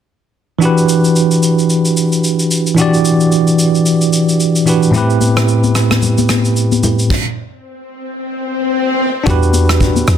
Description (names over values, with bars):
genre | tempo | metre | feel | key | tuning
amapiano | 111 BPM | 4/4 | swing 58% on 16ths | E minor | A4 = 440 Hz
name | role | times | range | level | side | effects
bell-like tine electric piano | accompaniment | 0.6-10.2 s | A2 to D5 | -11 LUFS | right 1 dB | medium stereo tremolo
soft brush drum kit | drums | 0.6-10.2 s | crash cymbal, kick drum, rim click, shaker | -19 LUFS | equal | none
congas | percussion | 4.9-10.1 s | none | -20 LUFS | left 6 dB | none
swell | sound effects | 8.0-9.3 s | none | -17 LUFS | left 3 dB | none
deep log drum bass | bass | 9.3-10.2 s | E2 | -13 LUFS | equal | none
room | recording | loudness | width
small room ambience | dense, heavily limited modern master | -11 LUFS | side -9 dB against mid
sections
0.6-9.3 A section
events
stop 7.1-9.3; swell 8.0-9.3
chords
0.6 Em7; 4.9 Am7; 9.3 Em7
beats
| 0.62 1.16 1.70 2.24 | 2.78 3.32 3.86 4.40 | 4.94 5.48 6.02 6.56 | 7.10 7.64 8.19 8.73 | 9.27 9.81